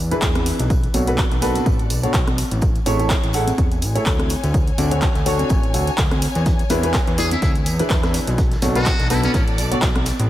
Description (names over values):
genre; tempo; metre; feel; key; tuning
piano house; 125 BPM; 4/4; swing 55% on 16ths; unclear; A4 = 440 Hz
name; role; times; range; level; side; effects
fat analog bass; bass; 0.0-10.3 s; E1 to E2; -22 LUFS; equal; sidechain pumping
warm grand piano; riff; 0.1-9.8 s; B2 to F#5; -23 LUFS; equal; wide subtle chorus, sidechain pumping, diffuse ambient delay
punchy analog drum machine; drums; 0.1-10.3 s; handclaps, hi-hat, rim click; -26 LUFS; equal; none
tambourine and congas; percussion; 0.1-10.3 s; none; -29 LUFS; right 1 dB; none
electronic kick drum; drums; 0.2-9.9 s; none; -20 LUFS; equal; none
warm symphonic string section; texture; 0.7-10.3 s; A4 to G#5; -32 LUFS; left 3 dB; sidechain pumping
vintage drum kit; drums; 6.5-10.2 s; hi-hat, snare drum; -35 LUFS; equal; none
trumpet with metal mute; melody; 7.2-9.4 s; C#4 to G#4; -27 LUFS; equal; diffuse ambient delay
room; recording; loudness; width
light reverb, small room ambience; none; -16 LUFS; side -14 dB against mid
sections
0.0-10.3 A section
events
fade-in on string section 0.0-10.3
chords
0.0 E7; 0.7 Bm7; 2.6 Amaj7; 4.3 Dmaj7; 6.5 E7; 8.4 Bm7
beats
0.22 | 0.70 1.18 1.66 2.14 | 2.62 3.10 3.58 4.06 | 4.54 5.02 5.50 5.98 | 6.46 6.94 7.42 7.90 | 8.38 8.86 9.34 9.82